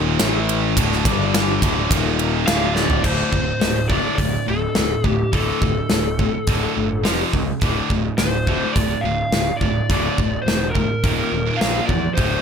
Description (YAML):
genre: hard rock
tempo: 105 BPM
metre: 4/4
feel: straight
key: D minor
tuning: A4 = 436 Hz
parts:
  - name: cranked stack guitar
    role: riff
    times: 0.0-12.4 s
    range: D2 to Bb3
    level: -24 LUFS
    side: left 11 dB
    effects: overdrive
  - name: heavy high-gain guitar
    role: riff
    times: 0.0-12.4 s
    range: D2 to Bb3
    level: -24 LUFS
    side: right 12 dB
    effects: distortion
  - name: fuzz picked electric bass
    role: bass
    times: 0.0-12.4 s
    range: D1 to E2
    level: -25 LUFS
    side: equal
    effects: overdrive
  - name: gated 80s drum kit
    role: drums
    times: 0.2-12.3 s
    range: crash cymbal, hi-hat, kick drum, ride cymbal, snare drum, toms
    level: -21 LUFS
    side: equal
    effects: none
  - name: lead guitar through a small cranked amp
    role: melody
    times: 2.5-12.4 s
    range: A4 to F5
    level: -25 LUFS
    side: left 2 dB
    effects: overdrive, analog delay
room: light reverb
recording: none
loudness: -17 LUFS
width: side -7 dB against mid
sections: 0.0-3.0 A section; 3.0-12.4 B section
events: drum fill 2.8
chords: 0.2 A5; 0.8 D5; 1.0 G5; 1.6 D5; 1.9 Eb5; 2.5 Dm; 3.0 D5; 7.0 F5; 7.6 D5; 11.0 Eb5; 11.6 Bb5